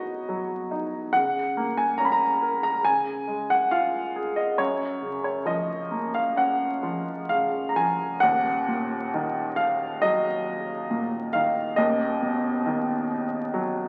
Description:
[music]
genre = classical, lyrical solo piano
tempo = 69 BPM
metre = 4/4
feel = rubato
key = F# major, Eb minor from 8.2 s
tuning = A4 = 440 Hz
[part]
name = bright upright piano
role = solo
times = 0.0-13.9 s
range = Eb1 to B5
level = -25 LUFS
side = equal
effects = none
[sound]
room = wet recital hall reverb, RT60 1.4 s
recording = very old 78 rpm record, vinyl crackle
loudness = -25 LUFS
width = mono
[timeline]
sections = 0.0-8.2 A section; 8.2-13.9 B section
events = none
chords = 0.0 B; 1.1 F#add9/C#; 2.9 C#; 4.6 F#maj7; 8.2 Ebm; 11.8 B/D#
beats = 0.29 | 1.15 2.00 2.86 3.72 | 4.59 5.46 6.37 7.30 | 8.22 9.13 10.02 10.90 | 11.78 12.65 13.53

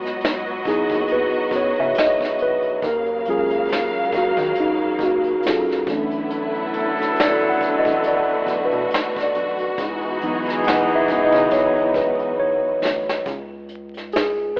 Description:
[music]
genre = R&B, neo-soul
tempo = 69 BPM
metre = 4/4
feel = swing 56% on 16ths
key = unclear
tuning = A4 = 440 Hz
[part]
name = warm symphonic string section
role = sustained chords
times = 0.0-13.2 s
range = C#3 to E#5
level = -24 LUFS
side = equal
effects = none
[part]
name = rubbery square bass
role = bass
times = 0.0-14.5 s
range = A1 to D#3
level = -32 LUFS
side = equal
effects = none
[part]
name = vintage brush drum kit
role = drums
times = 0.0-14.6 s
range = hi-hat, kick drum, snare drum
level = -26 LUFS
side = equal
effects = none
[part]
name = mellow tine electric piano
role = accompaniment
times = 0.7-14.6 s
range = E3 to F#5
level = -20 LUFS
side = equal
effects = medium stereo tremolo
[part]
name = mellow horn section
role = stabs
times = 6.3-12.8 s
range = E3 to A4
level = -22 LUFS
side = equal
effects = tape echo
[sound]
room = light reverb, small room ambience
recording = rough home demo mix, vinyl crackle, telephone sound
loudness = -17 LUFS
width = side -28 dB against mid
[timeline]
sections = 0.0-13.3 A section; 13.3-14.6 B section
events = tine electric piano solo 0.0-13.3, 13.3-14.6; drum fill 12.4-13.3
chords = 0.0 C#m11; 2.8 D#m11; 5.9 Bm11; 9.8 C#m11; 13.3 C#5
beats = 0.22 1.09 1.96 | 2.83 3.70 4.57 5.44 | 6.30 7.17 8.04 8.91 | 9.78 10.65 11.52 12.39 | 13.26 14.13

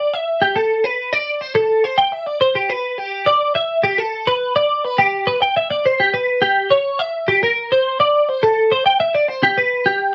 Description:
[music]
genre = rock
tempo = 70 BPM (dotted quarters)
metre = 6/8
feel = straight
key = A minor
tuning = A4 = 443 Hz
[part]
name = twelve-string electric guitar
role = solo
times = 0.0-10.1 s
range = G4 to G5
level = -17 LUFS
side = equal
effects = ensemble chorus
[sound]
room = moderate studio reverb, RT60 0.5 s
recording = none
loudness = -17 LUFS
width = mono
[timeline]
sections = 0.0-3.0 A section; 3.0-10.1 B section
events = none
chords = none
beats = 0.42 | 1.27 2.13 | 2.98 3.84 | 4.70 5.56 | 6.42 7.28 | 8.13 9.00 | 9.86

